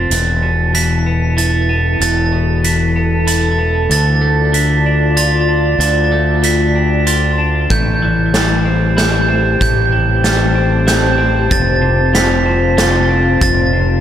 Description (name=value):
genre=post-rock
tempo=95 BPM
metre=3/4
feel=straight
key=A minor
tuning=A4 = 439 Hz
part: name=deep dark ambient pad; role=sustained chords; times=0.0-14.0 s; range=E4 to A5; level=-20 LUFS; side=left 1 dB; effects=chorus, built-in reverb
part: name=glockenspiel with soft plastic mallets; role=arpeggios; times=0.0-14.0 s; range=G6 to B6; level=-17 LUFS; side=right 4 dB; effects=digital delay
part: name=twelve-string electric guitar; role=arpeggios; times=0.0-14.0 s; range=E2 to F4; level=-19 LUFS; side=left 3 dB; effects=spring reverb, digital delay
part: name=growling fingered electric bass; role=bass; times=0.0-14.0 s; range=E1 to D2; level=-16 LUFS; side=equal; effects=overdrive
part: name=huge arena drum kit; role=drums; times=0.1-13.6 s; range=hi-hat, kick drum, snare drum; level=-19 LUFS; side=right 1 dB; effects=none
room=light reverb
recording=none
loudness=-11 LUFS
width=side -10 dB against mid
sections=0.0-14.0 A section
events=none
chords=0.1 Esus4; 3.9 Dm; 7.7 Am7; 11.5 F